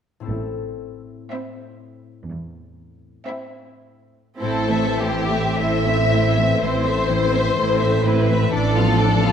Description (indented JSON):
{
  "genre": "classical",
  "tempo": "48-66 BPM",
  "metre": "4/4",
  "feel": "rubato",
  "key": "A minor",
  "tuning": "A4 = 440 Hz",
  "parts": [
    { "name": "concert harp", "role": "arpeggios", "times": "0.2-9.3 s", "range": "A2 to A4", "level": "-25 LUFS", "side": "left 6 dB", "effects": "none" },
    { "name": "rich studio double bass section", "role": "bass", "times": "0.3-9.3 s", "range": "A1", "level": "-25 LUFS", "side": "right 4 dB", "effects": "none" },
    { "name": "warm symphonic cello section", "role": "bass", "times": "0.3-9.3 s", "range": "E2 to A2", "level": "-24 LUFS", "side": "right 3 dB", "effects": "none" },
    { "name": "rich symphonic violin section", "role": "melody", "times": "1.3-9.3 s", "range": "C5 to F5", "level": "-30 LUFS", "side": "left 4 dB", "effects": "none" },
    { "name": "rich symphonic violin section", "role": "second line", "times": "1.3-9.3 s", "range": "E4 to E5", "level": "-22 LUFS", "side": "left 3 dB", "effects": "none" },
    { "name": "clear symphonic viola section", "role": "accompaniment", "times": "1.3-9.3 s", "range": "A3 to F4", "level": "-25 LUFS", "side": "right 2 dB", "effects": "none" }
  ],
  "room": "moderate concert hall reverb, RT60 1.8 s",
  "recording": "none",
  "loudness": "-17 LUFS",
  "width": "side -8 dB against mid",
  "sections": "0.3-4.4 A section; 4.4-9.3 B section",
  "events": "none",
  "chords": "0.3 Am; 8.5 Bdim/A"
}